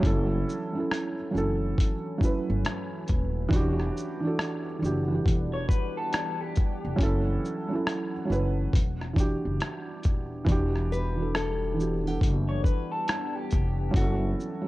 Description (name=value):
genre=lo-fi hip hop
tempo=69 BPM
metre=4/4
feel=swing 65% on 16ths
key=E dorian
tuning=A4 = 442 Hz
part: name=felt-muted upright piano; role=accompaniment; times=0.0-14.7 s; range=E3 to F#5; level=-30 LUFS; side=right 2 dB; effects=none
part: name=deep dark ambient pad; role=sustained chords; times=0.0-14.7 s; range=E3 to F#5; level=-38 LUFS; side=equal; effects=chorus, built-in reverb
part: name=upright bass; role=bass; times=0.0-14.3 s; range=D#1 to G1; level=-29 LUFS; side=equal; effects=none
part: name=dusty soul sampler-style drum kit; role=drums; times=0.0-14.7 s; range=hi-hat, kick drum, rim click, shaker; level=-26 LUFS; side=equal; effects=vintage 12-bit sampler grit
part: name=electric guitar through a small old amp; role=second line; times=5.5-7.0, 12.5-13.9 s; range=G4 to C#5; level=-36 LUFS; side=left 3 dB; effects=phaser, analog delay
part: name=nylon-string guitar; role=melody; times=10.9-14.6 s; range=F#4 to B4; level=-34 LUFS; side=left 3 dB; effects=none
room=light reverb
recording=cassette tape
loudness=-25 LUFS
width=side -18 dB against mid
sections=0.0-10.5 A section; 10.5-14.7 B section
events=none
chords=0.0 F#m7; 3.5 Em9; 7.0 F#m7; 8.7 Em9; 13.9 F#m7